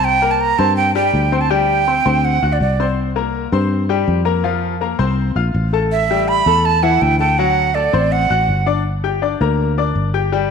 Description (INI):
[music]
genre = latin, salsa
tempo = 163 BPM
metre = 4/4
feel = straight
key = G minor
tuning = A4 = 440 Hz
[part]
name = breathy bright jazz flute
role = melody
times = 0.0-2.9, 5.9-8.7 s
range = D5 to B5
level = -16 LUFS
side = right 6 dB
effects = none
[part]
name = bright upright piano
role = accompaniment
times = 0.0-10.5 s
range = E3 to G6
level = -19 LUFS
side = left 9 dB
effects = none
[part]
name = fingered electric bass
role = bass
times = 0.0-10.5 s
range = G1 to G2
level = -18 LUFS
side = equal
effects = none
[sound]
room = moderate echo chamber reverb, RT60 1.8 s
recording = 1960s-style stereo with parts hard left and right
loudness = -14 LUFS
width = side -6 dB against mid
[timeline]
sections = 0.0-8.9 A section; 8.9-10.5 B section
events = none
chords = 0.0 C5; 1.5 D7sus4; 2.2 D7; 3.0 C5; 4.4 Fsus4; 5.9 Asus2; 7.4 D7; 8.9 Gm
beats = | 0.04 0.41 0.77 1.14 | 1.51 1.87 2.24 2.61 | 2.97 3.34 3.71 4.08 | 4.44 4.81 5.18 5.54 | 5.91 6.28 6.65 7.01 | 7.38 7.75 8.12 8.49 | 8.85 9.22 9.59 9.96 | 10.32